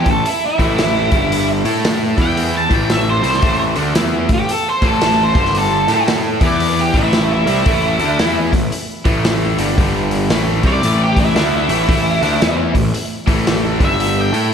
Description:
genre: blues rock power trio and southern rock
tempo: 114 BPM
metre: 4/4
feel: swing 63% on 8ths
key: A minor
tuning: A4 = 441 Hz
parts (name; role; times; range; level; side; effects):
- octave-fuzz lead guitar; melody; 0.0-14.5 s; E4 to A5; -18 LUFS; right 1 dB; distortion, slapback echo
- crunchy overdriven guitar; riff; 0.0-14.5 s; G2 to A4; -18 LUFS; left 1 dB; slapback echo
- fuzz picked electric bass; bass; 0.0-14.5 s; G1 to A2; -20 LUFS; equal; overdrive
- vintage drum kit; drums; 0.1-14.4 s; hi-hat, kick drum, snare drum; -18 LUFS; equal; none
room: moderate concert hall reverb, RT60 2.3 s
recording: big arena sound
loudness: -13 LUFS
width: side -7 dB against mid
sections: 0.0-14.5 A section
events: lead electric guitar solo 0.0-14.5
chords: 0.0 A5; 1.1 G5; 1.6 A5; 2.1 E5; 2.6 Am; 5.3 G5; 5.8 A5; 6.3 E5; 6.9 Am; 9.8 G5; 10.3 Am; 13.7 G5

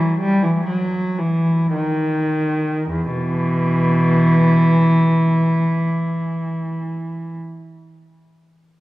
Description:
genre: classical, baroque-style suite movement for unaccompanied cello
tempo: 50-64 BPM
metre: 4/4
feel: rubato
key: E minor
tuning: A4 = 440 Hz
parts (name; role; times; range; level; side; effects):
- warm cello; solo; 0.0-7.4 s; E2 to G3; -16 LUFS; equal; none
room: moderate concert hall reverb, RT60 2.4 s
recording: worn, warbling old tape, cassette tape, warbly pitch drift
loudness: -16 LUFS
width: side -17 dB against mid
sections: 0.0-2.9 A section; 2.9-7.5 B section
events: slowing down 0.0-2.9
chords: none

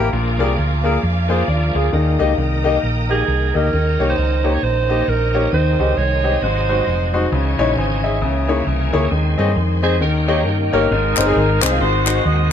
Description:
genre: uptempo gospel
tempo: 134 BPM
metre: 4/4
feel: swing 59% on 8ths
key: Ab major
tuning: A4 = 436 Hz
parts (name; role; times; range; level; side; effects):
- bright concert grand piano; accompaniment; 0.0-12.5 s; Ab2 to Ab5; -20 LUFS; left 4 dB; analog delay
- bright tonewheel organ; sustained chords; 0.0-12.5 s; C3 to Bb4; -27 LUFS; right 1 dB; slow rotary speaker, chorus vibrato
- muted studio string section; sustained chords; 0.0-10.9 s; C5 to Eb6; -30 LUFS; right 2 dB; none
- hollow-body short-scale fingered electric bass; bass; 0.0-12.5 s; F1 to G2; -19 LUFS; equal; none
- breathy alto saxophone; melody; 3.1-7.1 s; Ab4 to Db5; -22 LUFS; right 7 dB; analog delay
- clean electric guitar; second line; 9.8-10.9 s; Ab4 to Eb5; -26 LUFS; right 4 dB; ensemble chorus, analog delay
- dark saxophone section; melody; 10.7-12.5 s; Eb4 to Eb5; -19 LUFS; left 1 dB; analog delay
- group handclap; percussion; 11.2-12.2 s; none; -24 LUFS; left 6 dB; analog delay
room: light reverb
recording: echo-heavy mix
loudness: -15 LUFS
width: side -8 dB against mid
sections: 0.0-10.9 A section; 10.9-12.5 B section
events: none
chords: 0.1 Bb7; 1.9 Eb; 3.7 Eb7; 5.5 Abmaj7; 6.4 Ab7; 7.3 Dbmadd9; 8.2 Dbm6; 9.1 Ab/Eb; 10.0 Eb7; 10.9 Ab; 11.8 Ab7

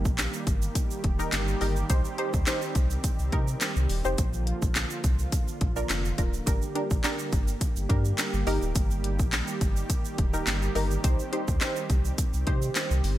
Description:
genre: dance-pop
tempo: 105 BPM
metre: 4/4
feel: straight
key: unclear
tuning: A4 = 441 Hz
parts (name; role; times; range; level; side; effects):
- punchy chord stab; accompaniment; 0.0-12.9 s; D4 to C5; -33 LUFS; equal; chorus, sidechain pumping
- warm analog pad; sustained chords; 0.0-13.2 s; D3 to G4; -35 LUFS; right 2 dB; chorus, sidechain pumping
- warm sub bass; bass; 0.0-13.2 s; D1 to C3; -28 LUFS; equal; sidechain pumping
- tube shaker; percussion; 0.0-13.2 s; none; -40 LUFS; right 9 dB; none
- house drum kit; drums; 0.1-13.2 s; handclaps, hi-hat, kick drum, snare drum; -27 LUFS; equal; gated reverb
room: light reverb, digital ambience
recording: bright 1980s-style digital production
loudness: -24 LUFS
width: side -14 dB against mid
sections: 0.0-13.2 A section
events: none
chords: 0.0 Eb; 1.9 Cm; 4.2 Bb; 6.5 Gm; 8.5 Eb; 11.0 Cm

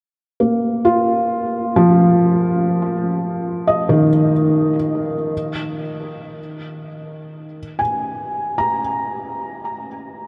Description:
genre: ambient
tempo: free time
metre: none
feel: none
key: unclear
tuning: A4 = 440 Hz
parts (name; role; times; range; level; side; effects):
- felt-muted upright piano; solo; 0.4-10.3 s; Eb3 to Bb5; -19 LUFS; equal; tape echo
room: wet huge ambient reverb, RT60 7.8 s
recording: dark, warm production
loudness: -18 LUFS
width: mono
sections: 0.0-10.3 A section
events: none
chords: 0.0 Eb5; 5.3 Absus2

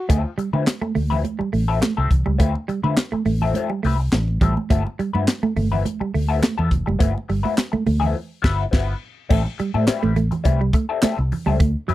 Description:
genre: funk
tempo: 104 BPM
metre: 4/4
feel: straight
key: unclear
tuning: A4 = 440 Hz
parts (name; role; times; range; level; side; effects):
- electric guitar through a small old amp; accompaniment; 0.1-11.9 s; F3 to B4; -25 LUFS; left 7 dB; wah
- clean electric guitar; riff; 0.1-11.9 s; F#3 to A3; -24 LUFS; right 4 dB; none
- vintage muted fingered electric bass; bass; 0.1-11.9 s; F1 to D3; -21 LUFS; equal; none
- crisp fusion drum kit; drums; 0.1-11.9 s; crash cymbal, handclaps, hi-hat, kick drum, snare drum; -19 LUFS; equal; none
- congas; percussion; 0.1-11.6 s; none; -28 LUFS; right 5 dB; none
room: little or no reverb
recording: dry, close 1970s-style studio recording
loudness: -18 LUFS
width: side -15 dB against mid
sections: 0.1-9.3 A section; 9.3-11.9 B section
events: band accent 8.2-9.3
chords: 0.1 Dm9; 4.7 G13; 9.3 Am7

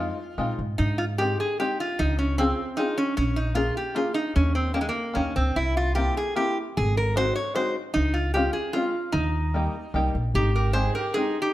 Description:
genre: musette waltz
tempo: 151 BPM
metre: 3/4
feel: rubato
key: Ab major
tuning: A4 = 440 Hz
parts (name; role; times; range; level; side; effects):
- metal-body resonator slide guitar; melody; 0.0-11.5 s; Ab3 to Db5; -26 LUFS; equal; none
- open-back banjo; accompaniment; 0.0-11.4 s; G3 to Ab4; -29 LUFS; left 2 dB; none
- upright bass; bass; 0.0-10.9 s; Ab1 to Bb2; -25 LUFS; equal; none
- dark violin; second line; 10.4-11.5 s; Eb4 to Ab4; -30 LUFS; right 3 dB; none
room: light reverb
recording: none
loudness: -22 LUFS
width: side -15 dB against mid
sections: 0.8-11.5 A section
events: none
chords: 0.0 Fm7; 0.8 Abmaj7; 2.0 Dbmaj7; 3.2 Bbm7; 4.4 Eb7; 5.6 C7; 6.8 Ab7; 8.0 Dbmaj7; 9.1 Eb; 10.3 Abmaj7

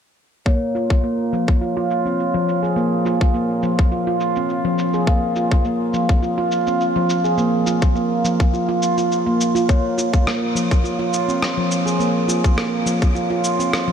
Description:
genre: organic downtempo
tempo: 104 BPM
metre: 4/4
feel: swing 53% on 16ths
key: Bb minor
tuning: A4 = 440 Hz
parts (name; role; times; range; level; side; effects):
- handpan; arpeggios; 0.5-13.9 s; F3 to Ab4; -18 LUFS; right 1 dB; low-pass filter, diffuse ambient delay
- electronic kick drum; drums; 0.5-13.1 s; none; -16 LUFS; equal; overdrive, studio reverb
- electronic shaker and rim click; drums; 0.5-13.9 s; none; -26 LUFS; equal; low-pass filter on perc, studio reverb, low-pass filter on snare
- bronze singing bowl; texture; 0.5-13.9 s; Db5 to F5; -27 LUFS; left 4 dB; none
room: wet huge ambient reverb, RT60 8.0 s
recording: dreamy mix soaked in reverb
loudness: -17 LUFS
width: side -8 dB against mid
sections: 0.5-13.9 A section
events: filter sweep on handpan 0.5-13.9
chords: 0.5 Bbm

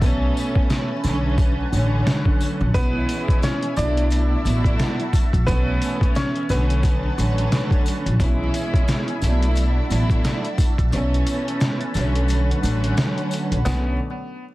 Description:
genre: hip hop, boom-bap hip-hop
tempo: 88 BPM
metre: 4/4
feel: swing 59% on 16ths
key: B dorian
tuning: A4 = 445 Hz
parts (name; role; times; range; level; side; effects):
- warm studio string section; accompaniment; 0.0-13.9 s; B2 to E4; -25 LUFS; right 1 dB; cassette tape, high-pass filter, low-pass filter, plate reverb
- lush unison pad; sustained chords; 0.0-14.0 s; B2 to A5; -32 LUFS; equal; chorus, phaser, high-pass filter, low-pass filter, plate reverb
- upright bass; bass; 0.0-14.0 s; A1 to B1; -21 LUFS; equal; none
- trip hop sampler-style drum kit; drums; 0.0-13.8 s; hi-hat, kick drum, snare drum; -21 LUFS; equal; none
- sleigh bells; percussion; 0.0-14.0 s; none; -39 LUFS; left 5 dB; none
- bright upright piano; melody; 2.7-8.2, 13.7-14.0 s; B3 to D5; -28 LUFS; equal; high-pass filter, low-pass filter, digital delay, plate reverb
room: light reverb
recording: dense, heavily limited modern master, vinyl crackle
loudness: -18 LUFS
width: side -18 dB against mid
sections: 0.0-13.7 A section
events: break 0.0-2.7; kick muted 10.9-13.7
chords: 0.0 Aadd9/B; 1.0 Bm7; 2.7 C#m/B; 3.8 Dadd9; 5.5 Aadd9/B; 6.5 Bm7; 8.2 C#m/B; 9.2 Dadd9; 10.9 Aadd9/B; 11.9 Bm7

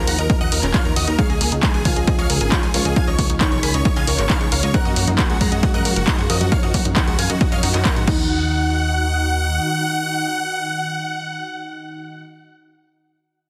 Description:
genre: uplifting trance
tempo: 135 BPM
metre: 4/4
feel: straight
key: Eb minor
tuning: A4 = 443 Hz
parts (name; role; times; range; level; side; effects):
- big supersaw lead; melody; 0.0-12.2 s; F4 to Cb6; -27 LUFS; equal; sidechain pumping, digital delay
- dark grand piano; second line; 0.0-12.2 s; Eb3 to Bb4; -32 LUFS; equal; digital delay
- plucky unison lead; second line; 0.0-12.2 s; Gb5 to Cb7; -35 LUFS; equal; none
- analog string pad; sustained chords; 0.0-12.2 s; Db3 to F5; -32 LUFS; equal; ensemble chorus, sidechain pumping
- unison pluck; arpeggios; 0.0-8.5 s; Bb3 to Eb5; -32 LUFS; equal; sidechain pumping, digital delay
- plucky analog bass; bass; 0.0-9.6 s; Eb1 to Ab2; -24 LUFS; equal; sidechain pumping
- punchy analog drum machine; drums; 0.1-8.2 s; crash cymbal, handclaps, hi-hat; -26 LUFS; equal; none
- electronic kick drum; drums; 0.3-8.2 s; none; -22 LUFS; equal; overdrive
room: little or no reverb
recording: dense, heavily limited modern master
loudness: -19 LUFS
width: mono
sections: 0.0-8.3 A section; 8.3-11.9 B section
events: drop 0.0-8.3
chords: 0.0 Ebmadd9; 1.2 Dbadd9; 4.7 Gbmaj7; 8.1 Ebm

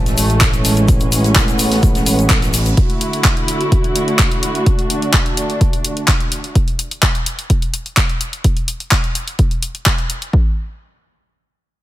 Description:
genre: progressive house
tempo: 127 BPM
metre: 4/4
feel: straight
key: unclear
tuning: A4 = 439 Hz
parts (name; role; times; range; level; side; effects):
- dark studio string section; sustained chords; 0.0-6.5 s; D3 to F#4; -20 LUFS; right 1 dB; sidechain pumping
- fat analog bass; bass; 0.0-2.8 s; A1; -16 LUFS; equal; sidechain pumping
- deep house drum kit; drums; 0.1-10.3 s; handclaps, hi-hat; -18 LUFS; equal; none
- open jazz drum kit; drums; 0.1-2.7 s; hi-hat, shaker, snare drum; -30 LUFS; right 2 dB; sidechain pumping on hats, high-pass filter on hats, high-pass filter on snare, sidechain pumping on perc, high-pass filter on perc, high-pass filter on room
- tube shaker; percussion; 0.1-2.7 s; none; -26 LUFS; left 6 dB; none
- electronic kick drum; drums; 0.4-10.4 s; none; -15 LUFS; equal; none
room: small room ambience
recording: none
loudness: -13 LUFS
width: side -15 dB against mid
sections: 0.0-10.3 A section; 10.3-11.8 B section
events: none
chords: 0.0 Amaj7; 2.8 Dadd9; 6.6 N.C.

